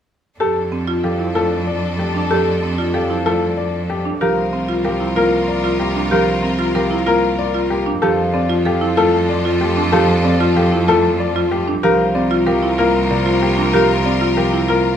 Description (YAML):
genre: classical, minimalist pattern music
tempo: 189 BPM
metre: 6/4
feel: straight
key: unclear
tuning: A4 = 440 Hz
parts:
  - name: bright baby grand piano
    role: melody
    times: 0.4-14.9 s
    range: G4 to D5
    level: -20 LUFS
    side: left 5 dB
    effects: none
  - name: clear studio string section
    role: sustained chords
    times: 0.4-15.0 s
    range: D4 to Bb4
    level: -25 LUFS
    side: left 4 dB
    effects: none
  - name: buzzing marimba with hard mallets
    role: arpeggios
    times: 0.4-14.9 s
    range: C4 to Bb4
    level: -19 LUFS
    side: right 2 dB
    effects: none
  - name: clear cello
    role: bass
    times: 0.4-15.0 s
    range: C2 to F2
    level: -22 LUFS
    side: right 2 dB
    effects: none
  - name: concert harp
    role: accompaniment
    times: 1.0-15.0 s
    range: C3 to Bb3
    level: -22 LUFS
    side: left 1 dB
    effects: none
room: moderate large studio reverb, RT60 0.9 s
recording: none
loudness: -14 LUFS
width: side -8 dB against mid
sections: 0.4-15.0 A section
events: none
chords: 0.4 F69; 4.2 C7sus4; 8.0 F69; 11.8 C7sus4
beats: | 0.40 0.72 1.04 1.36 1.67 1.99 | 2.31 2.63 2.94 3.26 3.58 3.90 | 4.21 4.53 4.85 5.17 5.48 5.80 | 6.12 6.44 6.75 7.07 7.39 7.71 | 8.02 8.34 8.66 8.98 9.29 9.61 | 9.93 10.24 10.56 10.88 11.20 11.52 | 11.83 12.15 12.47 12.79 13.10 13.42 | 13.74 14.05 14.37 14.69